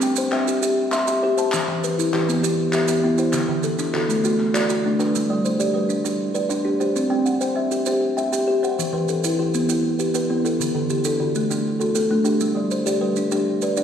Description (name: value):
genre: southern african traditional, mbira-style interlocking cycle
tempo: 132 BPM (dotted quarters)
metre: 12/8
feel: straight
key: G major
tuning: A4 = 440 Hz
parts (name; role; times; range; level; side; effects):
- kalimba; arpeggios; 0.0-13.8 s; D3 to A5; -22 LUFS; left 2 dB; none
- kalimba; arpeggios; 0.0-13.8 s; D3 to C6; -23 LUFS; right 2 dB; none
- maracas; percussion; 0.0-13.8 s; none; -31 LUFS; right 7 dB; none
- group handclap; percussion; 0.3-5.1 s; none; -29 LUFS; left 2 dB; none
room: wet recital hall reverb, RT60 1.6 s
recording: recorded in a church or concert hall, lossy compression artefacts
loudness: -19 LUFS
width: side -8 dB against mid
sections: 0.0-5.1 A section; 5.1-13.8 A section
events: none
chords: 0.0 C; 1.5 Em; 3.3 D; 5.1 G; 7.0 C; 8.8 Em; 10.6 D; 12.4 G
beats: 0.17 0.63 1.08 | 1.53 1.98 2.43 2.88 | 3.33 3.79 4.24 4.69 | 5.14 5.60 6.05 6.50 | 6.96 7.41 7.87 8.32 | 8.78 9.23 9.68 10.14 | 10.59 11.05 11.50 11.96 | 12.41 12.87 13.32 13.77